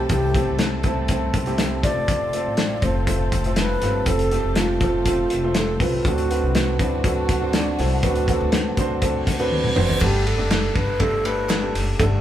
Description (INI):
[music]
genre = piano-driven pop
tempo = 121 BPM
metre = 4/4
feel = straight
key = G major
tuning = A4 = 440 Hz
[part]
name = bright reedy wooden-headed alto flute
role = melody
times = 0.0-12.1 s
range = D4 to D5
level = -25 LUFS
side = right 2 dB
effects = none
[part]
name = clear upright piano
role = accompaniment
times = 0.0-12.2 s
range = G2 to C5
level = -25 LUFS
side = equal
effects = none
[part]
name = warm studio string section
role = sustained chords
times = 0.0-10.0 s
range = F3 to A4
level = -33 LUFS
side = equal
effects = none
[part]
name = upright bass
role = bass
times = 0.0-12.2 s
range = F1 to D2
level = -25 LUFS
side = equal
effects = none
[part]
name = loose indie drum kit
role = drums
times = 0.1-12.1 s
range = crash cymbal, hi-hat, kick drum, ride cymbal, snare drum, toms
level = -23 LUFS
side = left 1 dB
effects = none
[part]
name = reverse cymbal and downlifter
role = sound effects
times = 9.2-12.2 s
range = none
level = -31 LUFS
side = right 1 dB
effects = none
[part]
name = group handclap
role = percussion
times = 10.5-11.6 s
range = none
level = -36 LUFS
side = right 4 dB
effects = none
[sound]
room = moderate large studio reverb, RT60 1.0 s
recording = band playing live in one room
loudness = -18 LUFS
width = side -11 dB against mid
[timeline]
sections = 0.0-10.0 A section; 10.0-12.2 B section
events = reverse cymbal 9.2-10.0; drum fill 9.5-10.0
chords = 0.0 Cadd9; 1.8 F; 6.0 D7; 10.0 Gsus2